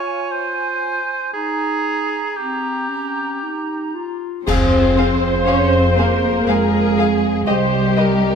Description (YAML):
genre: cinematic, emotional film score for orchestra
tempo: 59 BPM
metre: 3/4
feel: rubato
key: F minor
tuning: A4 = 441 Hz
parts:
  - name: bright small flute group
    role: second line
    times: 0.0-4.1 s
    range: Ab5 to Bb5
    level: -27 LUFS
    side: right 4 dB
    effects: none
  - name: clear oboe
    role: second line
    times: 0.0-3.9 s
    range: G4 to Db5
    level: -23 LUFS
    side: right 2 dB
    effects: none
  - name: mellow clarinet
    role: second line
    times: 0.0-4.5 s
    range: C4 to F4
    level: -28 LUFS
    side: left 1 dB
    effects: none
  - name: muted studio violin section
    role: melody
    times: 4.5-8.3 s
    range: G4 to Db5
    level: -23 LUFS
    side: left 6 dB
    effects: none
  - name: muted studio violin section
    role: second line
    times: 4.5-8.1 s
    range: G4 to F5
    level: -25 LUFS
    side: left 4 dB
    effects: none
  - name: muted studio viola section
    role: accompaniment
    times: 4.5-8.3 s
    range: Ab4 to C5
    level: -21 LUFS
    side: right 1 dB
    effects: none
  - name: clear French horn section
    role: sustained chords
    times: 4.5-8.3 s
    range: G4 to F5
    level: -24 LUFS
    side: left 5 dB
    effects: none
  - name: muted studio cello section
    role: bass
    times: 4.5-8.3 s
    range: G3 to Db4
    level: -18 LUFS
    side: right 2 dB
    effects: none
  - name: muted studio double bass section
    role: bass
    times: 4.5-8.3 s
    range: C2 to F2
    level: -20 LUFS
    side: right 2 dB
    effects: none
  - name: clash cymbals and concert bass drum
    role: percussion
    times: 4.5-6.4 s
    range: none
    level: -24 LUFS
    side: left 1 dB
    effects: none
room: moderate scoring stage reverb, RT60 1.9 s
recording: none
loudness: -16 LUFS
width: side -6 dB against mid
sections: 0.0-4.5 A section; 4.5-8.3 A section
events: band accent 4.5-5.5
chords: 0.0 Fm; 1.3 Eb; 4.5 Fm; 7.5 Cm